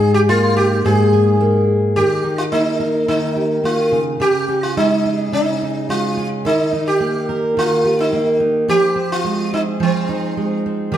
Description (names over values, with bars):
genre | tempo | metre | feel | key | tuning
pop | 107 BPM | 4/4 | straight | unclear | A4 = 436 Hz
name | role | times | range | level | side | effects
sitar | melody | 0.0-11.0 s | C4 to Ab4 | -18 LUFS | left 1 dB | none
fingerpicked steel-string acoustic guitar | accompaniment | 0.0-11.0 s | Ab2 to Bb4 | -17 LUFS | right 1 dB | none
room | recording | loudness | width
wet stone room reverb, RT60 1.3 s | band playing live in one room | -15 LUFS | side -11 dB against mid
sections
0.0-2.0 A section; 2.0-11.0 B section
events
none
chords
0.0 Absus2; 2.0 Eb; 3.9 Dbsus2; 6.5 Eb; 8.7 Fm7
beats
0.28 0.84 1.40 | 1.96 2.52 3.08 3.65 | 4.21 4.77 5.33 5.89 | 6.45 7.01 7.57 8.13 | 8.70 9.26 9.82 10.38 | 10.94